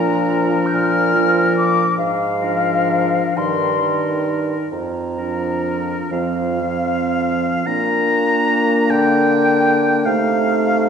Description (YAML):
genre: classical, slow romantic movement for wind quintet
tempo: 36-53 BPM (dotted quarters)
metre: 6/8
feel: rubato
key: Bb major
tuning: A4 = 438 Hz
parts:
  - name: mellow concert flute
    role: melody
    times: 0.0-10.9 s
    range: F5 to G6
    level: -22 LUFS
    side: left 4 dB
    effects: none
  - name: clear oboe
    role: second line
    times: 0.0-10.9 s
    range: Bb4 to Bb5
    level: -22 LUFS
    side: equal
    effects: none
  - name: mellow clarinet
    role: accompaniment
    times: 0.0-10.9 s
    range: C4 to Eb4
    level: -23 LUFS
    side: left 1 dB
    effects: none
  - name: warm French horn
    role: accompaniment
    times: 0.0-10.9 s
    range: Eb3 to Bb3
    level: -22 LUFS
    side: equal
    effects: none
  - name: clear bassoon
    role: bass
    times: 0.0-10.9 s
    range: F2 to D3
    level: -22 LUFS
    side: right 4 dB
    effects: none
room: wet recital hall reverb, RT60 1.7 s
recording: heard from further back in the room, nothing above 11.0 kHz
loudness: -15 LUFS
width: side -7 dB against mid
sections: 0.0-7.7 A section; 7.7-10.9 B section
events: none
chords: 0.0 Bb; 2.0 Bb7/Ab; 3.4 Eb/G; 4.7 Bb/F; 6.1 F5; 7.7 Bb; 10.1 Adim/C